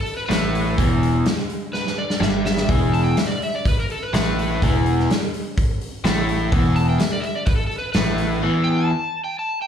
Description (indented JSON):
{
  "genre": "blues rock power trio and southern rock",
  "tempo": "126 BPM",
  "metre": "4/4",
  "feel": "straight",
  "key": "E minor",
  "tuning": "A4 = 440 Hz",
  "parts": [
    { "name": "overdriven slide guitar", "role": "melody", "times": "0.0-9.7 s", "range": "A4 to A5", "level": "-26 LUFS", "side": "equal", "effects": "slapback echo, plate reverb" },
    { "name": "huge arena drum kit", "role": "drums", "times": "0.1-8.3 s", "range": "hi-hat, kick drum, snare drum", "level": "-22 LUFS", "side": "equal", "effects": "none" },
    { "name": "overdriven electric guitar", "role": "riff", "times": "0.3-8.9 s", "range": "E2 to A3", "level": "-21 LUFS", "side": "equal", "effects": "slapback echo" },
    { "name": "growling picked electric bass", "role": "bass", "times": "0.3-8.4 s", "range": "E1 to A1", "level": "-22 LUFS", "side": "equal", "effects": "overdrive" }
  ],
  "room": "moderate club reverb, RT60 0.7 s",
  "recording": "live gig heard through the venue's PA, club reverb",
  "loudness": "-18 LUFS",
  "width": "side -8 dB against mid",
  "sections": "0.0-9.7 A section",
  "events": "drum fill 1.7-2.7",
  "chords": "0.0 Em",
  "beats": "0.31 | 0.79 1.27 1.75 2.22 | 2.70 3.18 3.66 4.14 | 4.62 5.09 5.57 6.05 | 6.53 7.00 7.48 7.96 | 8.44 8.91 9.39"
}